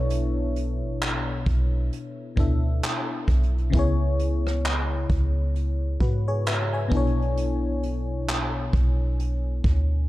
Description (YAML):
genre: contemporary R&B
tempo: 66 BPM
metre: 4/4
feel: swing 58% on 16ths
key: B dorian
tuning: A4 = 440 Hz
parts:
  - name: FM electric piano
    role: accompaniment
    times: 0.0-10.1 s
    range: B2 to G#5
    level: -28 LUFS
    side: left 3 dB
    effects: chorus
  - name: clean 808-style bass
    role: bass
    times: 0.0-10.1 s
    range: A1 to G#2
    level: -24 LUFS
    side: equal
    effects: none
  - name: vintage brush drum kit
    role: drums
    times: 0.1-9.9 s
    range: handclaps, hi-hat, kick drum, rim click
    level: -26 LUFS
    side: right 1 dB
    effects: none
room: small room ambience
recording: dark, warm production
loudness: -22 LUFS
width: side -16 dB against mid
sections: 0.0-10.1 A section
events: none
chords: 0.0 Bm11; 3.7 C#m7; 6.9 Bm11